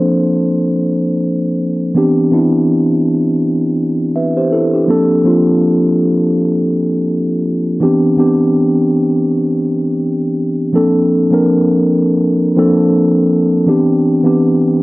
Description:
R&B; 82 BPM; 4/4; swing 58% on 16ths; A4 = 440 Hz
mellow tine electric piano; solo; 0.0-14.8 s; E3 to E5; -11 LUFS; equal; medium stereo tremolo, cassette tape
light reverb, digital ambience; home recording on cassette; -11 LUFS; side -21 dB against mid
0.0-10.7 A section; 10.7-14.8 B section
0.0 Bbmaj7; 2.0 Cmaj7; 4.9 Bbmaj7; 7.8 Cmaj7; 10.7 Bbmaj7; 13.7 Cmaj7
0.50 1.23 | 1.96 2.69 3.42 4.16 | 4.89 5.62 6.35 7.08 | 7.81 8.54 9.28 10.01 | 10.74 11.47 12.20 12.94 | 13.67 14.40

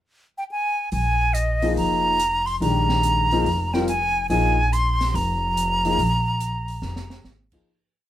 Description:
modal jazz; 142 BPM; 4/4; swing 66% on 8ths; Bb mixolydian; A4 = 440 Hz
bright silver concert flute; melody; 0.4-7.2 s; Eb5 to C6; -22 LUFS; right 1 dB
upright bass; bass; 0.9-7.6 s; F1 to Bb1; -24 LUFS; equal
open jazz drum kit; drums; 0.9-7.6 s; crash cymbal, hi-hat, kick drum, snare drum; -36 LUFS; right 2 dB
warm concert grand piano; accompaniment; 1.6-7.7 s; Eb3 to Bb4; -24 LUFS; left 3 dB
light reverb; band playing live in one room; -19 LUFS; side -12 dB against mid
0.0-0.9 pickup bar; 0.9-7.7 A section
fade-out 6.0-7.7; drum fill 6.8-7.2
0.0 N.C.; 0.9 Bb7sus4
0.07 0.50 | 0.92 1.34 1.76 2.19 | 2.61 3.03 3.46 3.88 | 4.30 4.72 5.14 5.56 | 5.98 6.41 6.83 7.25

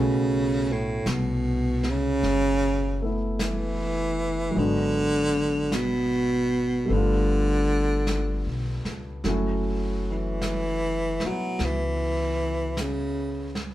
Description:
jazz; 51 BPM; 4/4; swing 69% on 8ths; A4 = 440 Hz
breathy baritone saxophone; melody; 0.0-13.7 s; A2 to F#3; -25 LUFS; right 1 dB
warm grand piano; accompaniment; 0.0-13.7 s; B2 to F#4; -31 LUFS; right 1 dB
upright bass; bass; 0.0-13.7 s; F#1 to C#2; -29 LUFS; left 1 dB
vintage brush drum kit; drums; 1.1-13.7 s; brushed snare drum, hi-hat, snare drum; -35 LUFS; right 2 dB
light reverb; band playing live in one room; -23 LUFS; side -14 dB against mid
0.0-13.7 A section
0.0 Bsus2; 4.6 G#m7b5; 6.9 G9; 9.2 F#m7
1.06 2.23 3.39 | 4.56 5.72 6.89 8.07 | 9.24 10.42 11.60 12.77

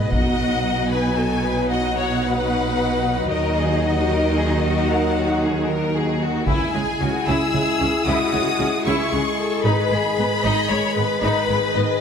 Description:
cinematic, epic orchestral film score; 76 BPM (dotted quarters); 12/8; straight; A4 = 442 Hz
rich symphonic violin section; melody; 0.0-12.0 s; D#5 to E6; -25 LUFS; left 4 dB
rich symphonic violin section; second line; 0.0-12.0 s; E4 to D#5; -25 LUFS; left 3 dB
rich symphonic viola section; accompaniment; 0.0-12.0 s; G#3 to G#4; -27 LUFS; equal
mellow French horn section; sustained chords; 0.0-12.0 s; D#3 to E4; -26 LUFS; left 3 dB
rich symphonic cello section; bass; 0.0-11.8 s; G#2 to D#3; -25 LUFS; right 2 dB
rich symphonic double bass section; bass; 0.0-11.8 s; G#1 to D#2; -26 LUFS; right 2 dB
taiko ensemble; drums; 0.1-1.1, 6.5-7.5 s; -25 LUFS; equal
moderate concert hall reverb, RT60 2.2 s; -18 LUFS; side -7 dB against mid
0.0-12.0 A section
0.1 B; 3.3 D#m; 6.5 C#m; 9.6 G#m
| 0.11 0.91 1.71 2.51 | 3.30 4.09 4.89 5.68 | 6.47 7.27 8.07 8.86 | 9.64 10.43 11.22

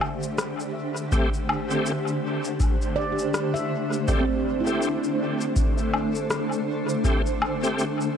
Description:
ambient dub; 81 BPM; 4/4; swing 58% on 16ths; A4 = 441 Hz
granular cloud pad; sustained chords; 0.0-8.2 s; D3 to C5; -26 LUFS; equal; built-in reverb
handpan; arpeggios; 0.0-7.7 s; C4 to E5; -31 LUFS; right 4 dB; dub echo
electronic woodblock, shaker and rim click; drums; 0.0-8.1 s; -31 LUFS; left 2 dB; studio reverb, dub echo
bright tonewheel organ; stabs; 1.1-7.8 s; A3 to G4; -30 LUFS; left 1 dB; overdrive, chorus vibrato, fast rotary speaker, dub echo
electronic kick drum; drums; 1.1-7.2 s; -25 LUFS; equal; overdrive, studio reverb
light reverb, digital ambience; -22 LUFS; side -8 dB against mid
0.0-8.2 A section
0.0 Am7/D
0.38 | 1.12 1.86 2.60 3.34 | 4.08 4.83 5.57 6.31 | 7.05 7.79

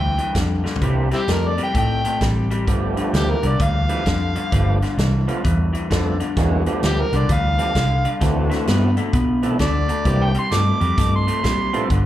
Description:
electric blues shuffle; 130 BPM; 4/4; swing 64% on 8ths; G mixolydian; A4 = 440 Hz
overdriven harmonica; melody; 0.0-11.9 s; C4 to D6; -24 LUFS; equal; slapback echo
electric guitar through a small old amp; riff; 0.0-12.1 s; G2 to B3; -24 LUFS; left 3 dB; slapback echo
vintage muted fingered electric bass; bass; 0.0-12.1 s; G1 to B2; -20 LUFS; equal
natural country drum kit; drums; 0.2-12.0 s; hi-hat, kick drum, snare drum, toms; -24 LUFS; equal
overdriven tonewheel organ; accompaniment; 0.8-11.9 s; E3 to A4; -27 LUFS; right 5 dB; slow rotary speaker, slapback echo
light reverb, small room ambience; live gig heard through the venue's PA, club reverb; -17 LUFS; side -13 dB against mid
0.0-12.1 A section
drum fill 0.6
0.0 G7(no3); 0.8 C7; 2.7 G7; 8.2 D7; 10.1 C7
0.35 | 0.81 1.28 1.74 2.21 | 2.67 3.13 3.60 4.06 | 4.52 4.98 5.44 5.90 | 6.37 6.83 7.29 7.75 | 8.21 8.67 9.13 9.59 | 10.05 10.52 10.98 11.44 | 11.90

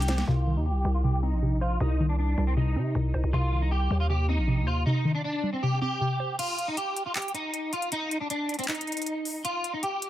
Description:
hip hop, trap; 157 BPM; 4/4; half-time; C minor; A4 = 440 Hz
electric guitar at the edge of break-up; melody; 0.0-10.1 s; C4 to G4; -30 LUFS; equal; ensemble chorus, low-pass filter, tape echo
hollow square pluck; accompaniment; 0.0-6.4 s; C3 to C5; -29 LUFS; equal; chorus, low-pass filter
growling 808-style bass; bass; 0.0-4.8 s; Bb1 to C3; -26 LUFS; equal
trap drum kit; drums; 0.0-0.3, 6.4-10.1 s; crash cymbal, handclaps, hi-hat, snare drum; -33 LUFS; equal
little or no reverb; dense, heavily limited modern master; -25 LUFS; side -13 dB against mid
0.3-6.4 A section; 6.4-10.1 B section
drum fill 0.0; filter sweep 0.3-6.4; break 6.4-10.1
0.3 Cm; 6.4 N.C.
| 0.28 0.66 1.04 1.42 | 1.80 2.19 2.57 2.95 | 3.33 3.71 4.10 4.48 | 4.86 5.24 5.63 6.01 | 6.39 6.77 7.15 7.54 | 7.92 8.30 8.68 9.06 | 9.45 9.83

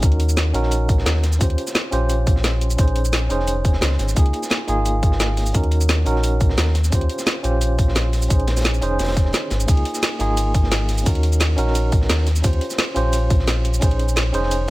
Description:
liquid drum and bass; 174 BPM; 4/4; straight; A4 = 437 Hz
mellow tine electric piano; accompaniment; 0.0-14.7 s; Bb3 to C5; -24 LUFS; right 1 dB; fast tremolo, dub echo
sub bass with octave; bass; 0.0-14.7 s; F1 to Eb2; -19 LUFS; equal
crunchy breakbeat drum kit; drums; 0.0-14.7 s; hi-hat, snare drum; -31 LUFS; equal; high-pass filter on hats, high-pass filter on snare, high-pass filter on room
drum and bass drum kit; drums; 0.0-14.6 s; hi-hat, ride cymbal, shaker, snare drum; -24 LUFS; equal
electronic kick drum; drums; 0.0-13.9 s; -18 LUFS; equal
light reverb; -16 LUFS; side -19 dB against mid
0.0-14.7 A section
0.0 Gb6; 1.2 Eb13; 2.8 Bbm11; 4.2 Db69; 5.5 Gb6; 6.8 Eb13; 8.3 Bbm11; 9.7 Db69; 11.1 Gb6; 12.3 Eb13; 13.8 Bbm11
| 0.03 0.37 0.72 1.06 | 1.41 1.75 2.10 2.44 | 2.79 3.13 3.48 3.82 | 4.16 4.51 4.85 5.20 | 5.54 5.89 6.23 6.58 | 6.92 7.27 7.61 7.96 | 8.30 8.65 8.99 9.34 | 9.68 10.03 10.37 10.72 | 11.06 11.41 11.75 12.10 | 12.44 12.79 13.13 13.47 | 13.82 14.16 14.51

